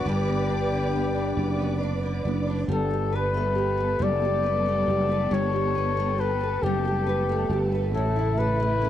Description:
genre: six-eight pop ballad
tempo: 46 BPM (dotted quarters)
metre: 6/8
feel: straight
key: unclear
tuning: A4 = 440 Hz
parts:
  - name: warm flugelhorn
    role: melody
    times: 0.0-8.9 s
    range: G4 to D5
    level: -26 LUFS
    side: left 5 dB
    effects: cassette tape
  - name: nylon-string guitar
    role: accompaniment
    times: 0.0-8.9 s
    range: G2 to B4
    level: -29 LUFS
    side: right 1 dB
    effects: double-tracked left and right
  - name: dark studio string section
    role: sustained chords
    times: 0.0-8.9 s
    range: C#3 to D6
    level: -32 LUFS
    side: right 1 dB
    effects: none
  - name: sustaining fretless electric bass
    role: bass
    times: 0.0-8.9 s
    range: F#1 to A1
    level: -27 LUFS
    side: right 1 dB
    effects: tube saturation
room: moderate booth ambience, RT60 0.2 s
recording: home recording on cassette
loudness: -22 LUFS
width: side -11 dB against mid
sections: 0.0-2.7 A section; 2.7-8.9 B section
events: none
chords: 0.0 G; 2.7 Gadd9; 7.9 A

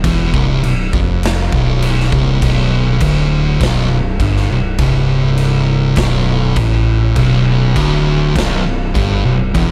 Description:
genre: stoner and doom metal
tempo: 101 BPM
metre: 4/4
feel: straight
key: B minor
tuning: A4 = 444 Hz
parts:
  - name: thick fuzz guitar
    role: riff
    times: 0.0-9.7 s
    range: B1 to A2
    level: -17 LUFS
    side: equal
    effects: distortion
  - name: smooth gliding synth bass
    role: bass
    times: 0.0-9.7 s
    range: B0 to A1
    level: -21 LUFS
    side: equal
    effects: overdrive
  - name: raw garage drum kit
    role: drums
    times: 0.0-9.7 s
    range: crash cymbal, kick drum, snare drum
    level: -21 LUFS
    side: equal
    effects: none
  - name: thick fuzz guitar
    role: riff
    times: 7.2-9.7 s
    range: B1 to G2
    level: -19 LUFS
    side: equal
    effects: distortion
room: little or no reverb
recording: none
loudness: -14 LUFS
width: mono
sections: 0.0-9.7 A section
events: none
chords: 0.0 Bm

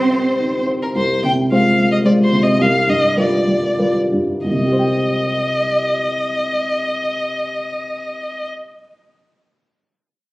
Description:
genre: quick classical-period movement for piano quartet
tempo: 88-111 BPM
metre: 3/4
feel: rubato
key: C minor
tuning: A4 = 441 Hz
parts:
  - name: rich violin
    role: melody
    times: 0.0-8.5 s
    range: Bb4 to G5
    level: -19 LUFS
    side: left 1 dB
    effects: none
  - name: warm cello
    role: second line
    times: 0.0-0.7 s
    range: C4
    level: -19 LUFS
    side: right 2 dB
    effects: none
  - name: warm violin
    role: second line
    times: 0.0-0.6 s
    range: C5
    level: -24 LUFS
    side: equal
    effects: none
  - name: dark grand piano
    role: accompaniment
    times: 0.0-8.8 s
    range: C2 to G5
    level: -17 LUFS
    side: equal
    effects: none
room: wet recital hall reverb, RT60 1.3 s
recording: recorded on a phone in the room, club reverb, compression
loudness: -15 LUFS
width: side -19 dB against mid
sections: 0.9-4.5 A section; 4.5-8.4 B section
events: slowing down 0.1-4.5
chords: 0.0 Cm; 0.9 Fm/C; 2.6 G7/C; 4.5 Cm

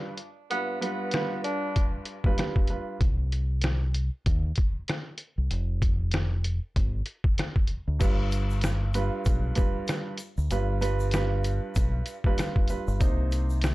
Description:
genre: hip hop, boom-bap hip-hop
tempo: 96 BPM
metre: 4/4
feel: swing 58% on 16ths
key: unclear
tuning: A4 = 437 Hz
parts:
  - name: warm upright piano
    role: accompaniment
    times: 0.0-3.0, 8.0-13.7 s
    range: G2 to C5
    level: -32 LUFS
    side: right 3 dB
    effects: high-pass filter, low-pass filter, plate reverb
  - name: trip hop sampler-style drum kit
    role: drums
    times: 0.2-13.7 s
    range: crash cymbal, hi-hat, kick drum, rim click, snare drum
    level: -26 LUFS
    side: equal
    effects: none
  - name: mellow tenor saxophone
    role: melody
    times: 0.5-1.9 s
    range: B3 to D4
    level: -32 LUFS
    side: equal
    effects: high-pass filter, low-pass filter, ping-pong delay
  - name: deep dub fingered electric bass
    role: bass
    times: 3.0-13.7 s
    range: F1 to Eb2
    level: -26 LUFS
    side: equal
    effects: none
  - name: egg shaker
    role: percussion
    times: 8.0-13.7 s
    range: none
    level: -49 LUFS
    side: left 6 dB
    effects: none
room: little or no reverb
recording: dark, warm production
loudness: -25 LUFS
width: side -19 dB against mid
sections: 0.0-8.0 A section; 8.0-13.7 B section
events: none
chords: 0.0 G7; 3.0 N.C.; 8.0 G7; 13.0 Cm7

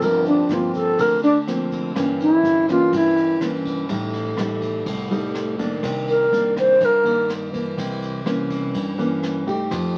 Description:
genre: bossa nova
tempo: 124 BPM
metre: 4/4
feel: straight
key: G minor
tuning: A4 = 441 Hz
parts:
  - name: wooden-headed alto flute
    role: melody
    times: 0.0-7.3 s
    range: D4 to C5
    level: -19 LUFS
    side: equal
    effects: none
  - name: nylon-string guitar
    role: accompaniment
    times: 0.0-10.0 s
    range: G2 to G4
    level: -26 LUFS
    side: equal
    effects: none
  - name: upright bass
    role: bass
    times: 0.0-10.0 s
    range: G1 to G2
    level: -33 LUFS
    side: equal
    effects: none
  - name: jazz brush drum kit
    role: drums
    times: 0.0-10.0 s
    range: kick drum, ride cymbal, rim click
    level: -36 LUFS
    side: equal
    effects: none
  - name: tube shaker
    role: percussion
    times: 0.0-10.0 s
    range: none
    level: -49 LUFS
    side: equal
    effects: none
room: moderate studio ambience, RT60 0.5 s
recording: very old 78 rpm record, vinyl crackle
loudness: -21 LUFS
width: mono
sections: 0.0-10.0 A section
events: alto flute solo 0.0-10.0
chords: 0.0 Gm7; 2.0 Gdim7; 3.9 Am7b5; 5.8 Cm9; 7.8 C7b9

